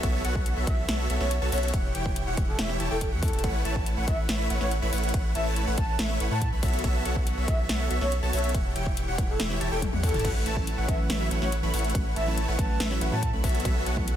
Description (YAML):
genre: future bass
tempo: 141 BPM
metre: 4/4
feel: half-time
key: A mixolydian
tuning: A4 = 440 Hz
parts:
  - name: airy dreamy lead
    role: arpeggios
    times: 0.0-14.2 s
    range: E5 to B5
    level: -36 LUFS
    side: equal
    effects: chorus, vintage 12-bit sampler grit, sidechain pumping, dub echo
  - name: supersaw chords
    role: riff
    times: 0.0-14.2 s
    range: E3 to B5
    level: -32 LUFS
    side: equal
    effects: sidechain pumping
  - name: saturated sub bass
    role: bass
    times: 0.0-14.2 s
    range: E1 to A2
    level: -29 LUFS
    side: equal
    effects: tube saturation, sidechain pumping
  - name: big-room dance drum kit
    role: drums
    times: 0.0-14.2 s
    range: crash cymbal, hi-hat, ride cymbal, snare drum, toms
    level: -33 LUFS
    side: left 2 dB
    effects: none
  - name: electronic kick drum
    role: drums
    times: 0.0-14.1 s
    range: none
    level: -28 LUFS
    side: equal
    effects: none
  - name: breathy flute-like synth lead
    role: melody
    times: 0.7-13.3 s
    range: A4 to A5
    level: -35 LUFS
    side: equal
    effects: analog chorus, cassette tape, sidechain pumping, ping-pong delay
  - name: mellow tine electric piano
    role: accompaniment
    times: 10.2-14.1 s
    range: E3 to B4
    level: -35 LUFS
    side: right 3 dB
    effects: sidechain pumping
room: digital ambience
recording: dense, heavily limited modern master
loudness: -24 LUFS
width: side -10 dB against mid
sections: 0.0-14.2 A section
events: drum fill 9.8-10.2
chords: 0.0 B7sus4; 1.7 Em6; 3.4 A6; 6.6 B7sus4; 8.5 Em6; 10.2 A6; 13.4 B7sus4